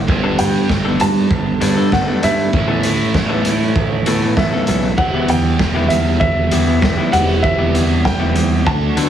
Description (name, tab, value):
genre	indie rock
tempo	98 BPM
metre	4/4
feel	straight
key	A mixolydian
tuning	A4 = 441 Hz
part	modern bright picked electric bass	bass	0.0-9.1 s	E1 to D3	-18 LUFS	equal	none
part	raw garage guitar	riff	0.1-9.1 s	E2 to G4	-21 LUFS	right 9 dB	overdrive, wide subtle chorus, slapback echo
part	raw garage drum kit	drums	0.1-9.1 s	hi-hat, kick drum, snare drum	-19 LUFS	equal	none
part	electric guitar through a small old amp	riff	0.2-9.1 s	E3 to A4	-21 LUFS	left 8 dB	none
part	dark upright piano	melody	0.4-9.1 s	E5 to A5	-21 LUFS	right 1 dB	slapback echo
room	light reverb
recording	heavily compressed radio sound, small room ambience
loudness	-13 LUFS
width	side -10 dB against mid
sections	0.0-9.1 A section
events	none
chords	0.1 Gadd9; 2.5 Aadd9; 5.0 Em; 7.1 Cmaj7/E